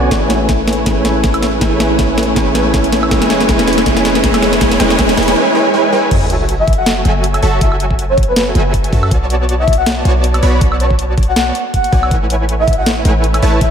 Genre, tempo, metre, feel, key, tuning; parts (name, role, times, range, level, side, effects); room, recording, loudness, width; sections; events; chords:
future bass; 160 BPM; 4/4; swing 56% on 16ths, half-time; F# minor; A4 = 438 Hz
felt-muted upright piano; accompaniment; 0.0-6.1 s; D3 to C#5; -19 LUFS; left 2 dB; sidechain pumping, tape echo
supersaw stab; riff; 0.0-13.7 s; F#3 to B5; -16 LUFS; right 1 dB; cassette tape, sidechain pumping, tape echo
warm 808-style bass; bass; 0.0-13.7 s; E1 to F#2; -17 LUFS; equal; sidechain pumping
electronic kick drum; drums; 0.1-13.7 s; -16 LUFS; equal
trap drum kit; drums; 0.1-13.7 s; crash cymbal, hi-hat, snare drum, woodblock; -17 LUFS; equal
riser and sub drop; sound effects; 1.7-7.6 s; -25 LUFS; equal
breathy flute-like synth lead; melody; 6.6-13.7 s; B4 to F#5; -18 LUFS; left 1 dB; wide subtle chorus, sidechain pumping, analog delay
wet lush hall reverb, RT60 1.9 s; dreamy mix soaked in reverb; -10 LUFS; side -8 dB against mid
0.0-6.1 A section; 6.1-13.7 B section
build-up 0.0-6.1; drum fill 0.0-5.4; filter sweep on supersaw synth 0.0-6.1; drop 6.1-13.7; impact 6.1-7.6
0.1 Amaj7; 3.1 E; 6.1 F#m7; 9.1 Bm9; 12.1 Amaj7